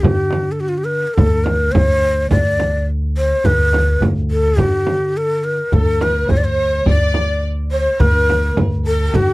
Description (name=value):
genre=Arabic maqam ensemble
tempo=106 BPM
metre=4/4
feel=straight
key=D maqam huzam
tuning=A4 = 439 Hz
part: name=breathy ney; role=melody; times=0.0-9.3 s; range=F#4-46c to D5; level=-18 LUFS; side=left 1 dB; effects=none
part: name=upright bass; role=bass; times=0.0-9.3 s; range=D2 to D3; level=-18 LUFS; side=equal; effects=none
part: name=darbuka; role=percussion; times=0.0-9.3 s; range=none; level=-21 LUFS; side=left 1 dB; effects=none
part: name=frame drum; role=percussion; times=0.0-9.3 s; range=none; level=-20 LUFS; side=right 2 dB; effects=none
part: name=warm symphonic violin section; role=second line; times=5.7-9.3 s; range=G4-40c to D5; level=-24 LUFS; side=equal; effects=none
room=little or no reverb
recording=dry, close 1970s-style studio recording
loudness=-14 LUFS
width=side -20 dB against mid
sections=0.0-9.3 A section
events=none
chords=none